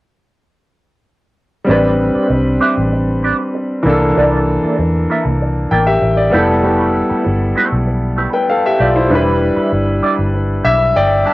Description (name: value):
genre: lush 1970s-style soul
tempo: 97 BPM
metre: 4/4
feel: straight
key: A minor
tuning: A4 = 440 Hz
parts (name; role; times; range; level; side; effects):
- clear concert grand piano; accompaniment; 1.6-11.3 s; E3 to A5; -14 LUFS; left 1 dB; cassette tape
- mellow electric guitar; riff; 1.7-11.3 s; G3 to E5; -19 LUFS; right 3 dB; wah, tremolo, cassette tape
- vintage muted fingered electric bass; bass; 1.7-11.2 s; E1 to E2; -17 LUFS; equal; none
room: light reverb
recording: home recording on cassette, lossy compression artefacts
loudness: -12 LUFS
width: side -18 dB against mid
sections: 1.7-11.3 A section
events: grand piano fill 10.3-11.3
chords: 1.7 Am11; 3.9 C13; 6.3 Fmaj9#11; 9.1 Em7